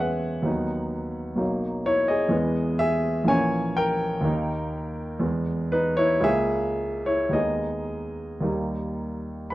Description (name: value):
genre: classical, romantic character piece for solo piano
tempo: 53-66 BPM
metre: 2/4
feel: rubato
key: unclear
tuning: A4 = 440 Hz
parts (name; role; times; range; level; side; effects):
- warm baby grand piano; solo; 0.0-9.5 s; A#1 to B5; -23 LUFS; equal; none
room: moderate studio reverb, RT60 0.6 s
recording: worn, warbling old tape, cassette tape, warbly pitch drift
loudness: -23 LUFS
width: side -16 dB against mid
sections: 0.0-9.5 A section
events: none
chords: 0.5 B/D#; 1.4 Bmaj7; 2.3 Emaj7; 3.3 A#m7b5; 4.2 D#; 5.2 E; 6.3 A#m7b5/C#; 7.4 G#m/D#; 8.5 D#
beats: 0.48 | 1.40 2.33 | 3.28 4.25 | 5.23 6.25 | 7.36 8.46 | 9.52